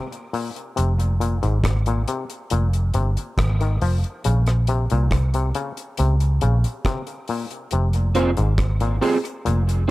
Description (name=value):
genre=dub reggae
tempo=69 BPM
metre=4/4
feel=straight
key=F minor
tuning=A4 = 440 Hz
part: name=muted clav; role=arpeggios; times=0.0-9.9 s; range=Ab2 to F3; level=-27 LUFS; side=left 4 dB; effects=auto-wah, tape echo
part: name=deep reggae drum kit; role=drums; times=0.1-9.9 s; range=hi-hat, kick drum, rim click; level=-27 LUFS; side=equal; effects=none
part: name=vintage muted fingered electric bass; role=bass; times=0.8-9.9 s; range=F1 to Db2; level=-19 LUFS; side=equal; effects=none
part: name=electric guitar at the edge of break-up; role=accompaniment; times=8.1-9.9 s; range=C4 to C5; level=-23 LUFS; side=right 3 dB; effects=analog chorus, tape echo
room=light reverb, studio ambience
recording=none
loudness=-19 LUFS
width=side -18 dB against mid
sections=0.0-9.9 A section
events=break 0.0-0.8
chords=0.0 N.C.; 0.8 Fm; 4.2 Bbm; 7.7 Fm